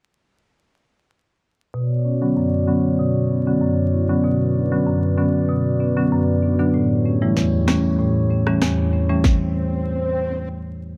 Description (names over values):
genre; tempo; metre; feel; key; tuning
dancehall; 96 BPM; 4/4; straight; B minor; A4 = 439 Hz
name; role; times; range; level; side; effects
marimba with medium mallets; accompaniment; 1.7-9.2 s; E2 to E4; -21 LUFS; equal; low-pass filter
glass harmonica; sustained chords; 1.7-9.2 s; A3 to D5; -28 LUFS; equal; sidechain pumping, low-pass filter
swell; sound effects; 9.5-10.5 s; none; -31 LUFS; equal; none
island pop drum kit; drums; 7.4-9.4 s; kick drum, rim click, snare drum; -22 LUFS; equal; overdrive
room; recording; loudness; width
light reverb, small room ambience; dark, warm production, vinyl crackle; -20 LUFS; mono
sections
1.7-11.0 A section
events
filter sweep 1.7-11.0; stop 9.2-11.0; swell 9.5-11.0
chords
1.7 Bmadd9; 6.7 A7; 9.2 N.C.